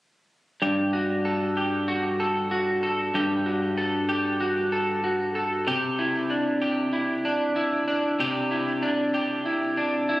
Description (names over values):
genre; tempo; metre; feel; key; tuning
dream pop; 95 BPM; 4/4; straight; unclear; A4 = 440 Hz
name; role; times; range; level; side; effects
electric guitar at the edge of break-up; solo; 0.6-10.2 s; G2 to A4; -23 LUFS; equal; analog chorus, tape echo
room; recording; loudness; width
moderate concert hall reverb, RT60 1.9 s; recorded on a phone in the room, club reverb, compression; -23 LUFS; side -18 dB against mid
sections
0.6-10.2 A section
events
none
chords
0.6 Gsus2; 5.7 Cadd9